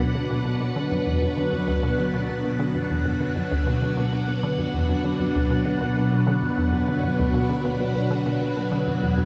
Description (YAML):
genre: ambient, sequencer-driven space music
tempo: 98 BPM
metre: 4/4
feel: straight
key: B minor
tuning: A4 = 439 Hz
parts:
  - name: phased string machine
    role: sustained chords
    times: 0.0-9.2 s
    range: B2 to F#5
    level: -27 LUFS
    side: equal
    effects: ensemble chorus, phaser, shimmer reverb
  - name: resonant blip pluck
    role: riff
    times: 0.0-9.2 s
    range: D2 to D3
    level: -27 LUFS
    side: equal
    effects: chorus, analog delay
  - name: wind-like tuned noise texture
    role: texture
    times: 0.4-9.2 s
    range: F#5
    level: -43 LUFS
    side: equal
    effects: none
room: wet huge ambient reverb, RT60 7.4 s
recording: in a vast, echoing space, small room ambience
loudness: -24 LUFS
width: mono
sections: 0.0-9.2 A section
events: none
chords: 0.0 Bm